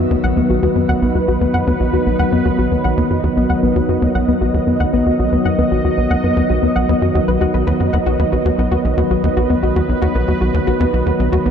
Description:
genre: ambient, sequencer-driven space music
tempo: 115 BPM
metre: 4/4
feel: straight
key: B major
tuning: A4 = 439 Hz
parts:
  - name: sweeping resonant pad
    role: sustained chords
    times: 0.0-11.5 s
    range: D#3 to D#5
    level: -18 LUFS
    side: equal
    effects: chorus
  - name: soft round pluck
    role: arpeggios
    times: 0.0-11.5 s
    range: B3 to F#5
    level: -20 LUFS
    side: left 3 dB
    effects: chorus, auto-pan, ping-pong delay
  - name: tight sequencer bass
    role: riff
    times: 0.0-11.5 s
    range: B1 to F#2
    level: -18 LUFS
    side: equal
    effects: wide subtle chorus, ping-pong delay
  - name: pulsing gated texture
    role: texture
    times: 0.4-11.5 s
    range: D#5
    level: -26 LUFS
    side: right 5 dB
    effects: chorus, built-in reverb
room: wet huge ambient reverb, RT60 7.3 s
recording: dark, warm production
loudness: -14 LUFS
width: side -8 dB against mid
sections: 0.0-11.5 A section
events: filter sweep on analog synth bass 0.0-11.5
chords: 0.0 B

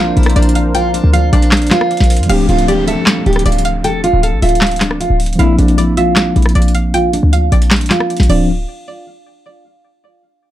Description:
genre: hip hop, trap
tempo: 155 BPM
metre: 4/4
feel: half-time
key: D minor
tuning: A4 = 440 Hz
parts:
  - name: picked steel-string acoustic guitar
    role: melody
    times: 0.0-8.5 s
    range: D4 to A4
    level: -16 LUFS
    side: right 1 dB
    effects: low-pass filter, tape echo
  - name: mellow tine electric piano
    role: accompaniment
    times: 0.0-8.5 s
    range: F3 to D4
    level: -18 LUFS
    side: left 2 dB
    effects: medium stereo tremolo, low-pass filter
  - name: dark analog pad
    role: sustained chords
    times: 0.0-2.3 s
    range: D4 to F5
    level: -23 LUFS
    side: right 1 dB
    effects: chorus
  - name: short 808-style bass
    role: bass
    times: 0.0-8.7 s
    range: D1 to F2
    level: -13 LUFS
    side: equal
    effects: none
  - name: booming analog drum machine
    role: drums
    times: 0.2-8.4 s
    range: crash cymbal, handclaps, hi-hat, rim click, snare drum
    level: -16 LUFS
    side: equal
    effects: none
  - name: string-like resonator pluck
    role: second line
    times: 0.4-8.5 s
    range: D5 to G5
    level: -22 LUFS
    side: equal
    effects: chorus, phaser, tape echo
  - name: downlifter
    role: sound effects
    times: 2.3-5.4 s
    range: none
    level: -27 LUFS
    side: left 2 dB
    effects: none
room: little or no reverb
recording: dark, warm production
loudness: -10 LUFS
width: side -13 dB against mid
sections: 0.0-2.3 A section; 2.3-8.5 B section; 8.5-10.0 C section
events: filter sweep 2.3-8.5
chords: 0.0 Bbadd9; 2.3 Dm7; 5.4 Bbadd9; 8.3 Dm7; 8.5 N.C.

